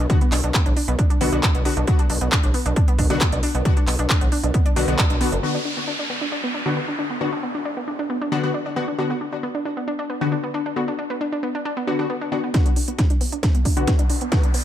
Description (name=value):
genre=driving peak-time techno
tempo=135 BPM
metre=4/4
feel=straight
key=B minor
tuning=A4 = 443 Hz
part: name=analog pluck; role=riff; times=0.0-14.6 s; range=B3 to D4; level=-26 LUFS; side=equal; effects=chorus, tube saturation, sidechain pumping, ping-pong delay
part: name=gritty driven synth bass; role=bass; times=0.0-5.4 s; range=F#1 to B1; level=-23 LUFS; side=equal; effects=sidechain pumping
part: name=rave stab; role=stabs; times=0.1-14.4 s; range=D3 to F#4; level=-26 LUFS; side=left 4 dB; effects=chorus, built-in reverb, sidechain pumping, ping-pong delay
part: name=electronic kick drum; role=drums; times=0.1-5.1, 12.5-14.4 s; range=none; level=-19 LUFS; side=equal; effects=none
part: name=techno drum kit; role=drums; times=0.1-5.5, 12.5-14.6 s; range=crash cymbal, handclaps, hi-hat, snare drum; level=-26 LUFS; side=right 1 dB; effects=sidechain pumping on hats, low-pass filter on hats, low-pass filter on snare, sidechain pumping on cymbals, low-pass filter on cymbals, low-pass filter on room
part: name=downlifter and riser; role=sound effects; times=5.4-9.0, 13.2-14.6 s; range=none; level=-30 LUFS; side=right 1 dB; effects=none
room=light reverb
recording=none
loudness=-19 LUFS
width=side -11 dB against mid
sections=0.0-5.4 A section; 5.4-12.5 B section; 12.5-14.6 C section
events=band accent 5.0; build-up 12.5-14.6; drum fill 12.5-14.6; riser 13.2-14.6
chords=0.0 Bm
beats=| 0.10 0.54 0.99 1.43 | 1.88 2.32 2.76 3.21 | 3.65 4.10 4.54 4.99 | 5.43 5.88 6.32 6.76 | 7.21 7.65 8.10 8.54 | 8.99 9.43 9.88 10.32 | 10.76 11.21 11.65 12.10 | 12.54 12.99 13.43 13.88 | 14.32